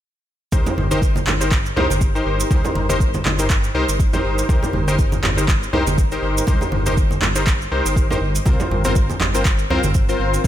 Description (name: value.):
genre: afro house.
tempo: 121 BPM.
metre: 4/4.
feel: swing 56% on 16ths.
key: C minor.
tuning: A4 = 444 Hz.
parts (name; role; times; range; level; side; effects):
warm analog keys; stabs; 0.5-10.5 s; C4 to C5; -22 LUFS; left 1 dB; chorus, sidechain pumping, ping-pong delay.
dark detuned saw bass; bass; 0.5-10.5 s; G1 to C2; -22 LUFS; equal; sidechain pumping.
electronic kick drum; drums; 0.5-10.5 s; none; -18 LUFS; equal; none.
congas; percussion; 0.5-10.5 s; none; -25 LUFS; right 2 dB; none.
maracas; percussion; 0.5-10.5 s; none; -30 LUFS; right 6 dB; none.
electronic handclaps; drums; 1.3-9.6 s; none; -24 LUFS; equal; none.
room: light reverb.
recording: none.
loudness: -16 LUFS.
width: side -12 dB against mid.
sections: 0.5-10.5 A section.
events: none.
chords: 0.5 Cm7; 8.5 Bbsus2.